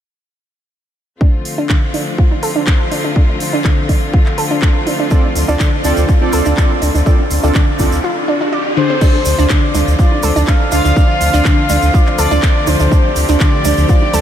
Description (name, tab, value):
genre	progressive house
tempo	123 BPM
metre	4/4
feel	straight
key	D minor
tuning	A4 = 440 Hz
part	clear studio string section	sustained chords	1.2-14.2 s	D3 to G4	-22 LUFS	left 2 dB	sidechain pumping
part	analog pluck	arpeggios	1.2-14.2 s	D3 to D5	-18 LUFS	right 1 dB	chorus, vintage 12-bit sampler grit, sidechain pumping, diffuse ambient delay
part	electronic kick drum	drums	1.2-14.0 s	none	-12 LUFS	equal	small room ambience
part	house drum kit	drums	1.5-14.2 s	crash cymbal, handclaps, hi-hat	-24 LUFS	equal	small room ambience
part	congas	percussion	1.9-14.2 s	none	-30 LUFS	right 6 dB	none
part	soft supersaw	stabs	5.1-8.0 s	C4 to D5	-21 LUFS	right 2 dB	sidechain pumping, diffuse ambient delay
part	egg shaker	percussion	5.1-14.2 s	none	-28 LUFS	right 4 dB	none
part	riser	sound effects	6.9-9.0 s	none	-26 LUFS	equal	none
part	round analog bass	bass	5.4-14.2 s	D2	-15 LUFS	equal	tube saturation, sidechain pumping
part	expressive synth lead	melody	8.8-14.2 s	C5 to F5	-18 LUFS	left 1 dB	chorus, sidechain pumping, diffuse ambient delay
room	moderate huge ambient reverb, RT60 6.9 s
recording	dreamy mix soaked in reverb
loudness	-11 LUFS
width	side -10 dB against mid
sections	1.2-9.0 A section; 9.0-14.2 B section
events	filter sweep on synth pluck 1.2-9.0; riser 6.9-9.0; break 8.0-9.0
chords	1.2 Dm7